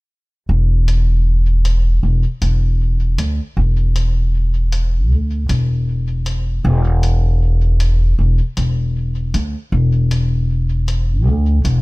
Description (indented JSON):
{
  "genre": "ambient dub",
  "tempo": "78 BPM",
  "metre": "4/4",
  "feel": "swing 59% on 16ths",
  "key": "unclear",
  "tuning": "A4 = 440 Hz",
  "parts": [
    { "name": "upright bass", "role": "bass", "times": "0.5-11.8 s", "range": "E1 to D2", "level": "-14 LUFS", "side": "equal", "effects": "none" },
    { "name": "electronic hi-hat", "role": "drums", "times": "0.9-11.8 s", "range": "none", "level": "-32 LUFS", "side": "left 2 dB", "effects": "dub echo" }
  ],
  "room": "little or no reverb",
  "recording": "echo-heavy mix",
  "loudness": "-14 LUFS",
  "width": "side -24 dB against mid",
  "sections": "0.5-11.8 A section",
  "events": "none",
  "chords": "none"
}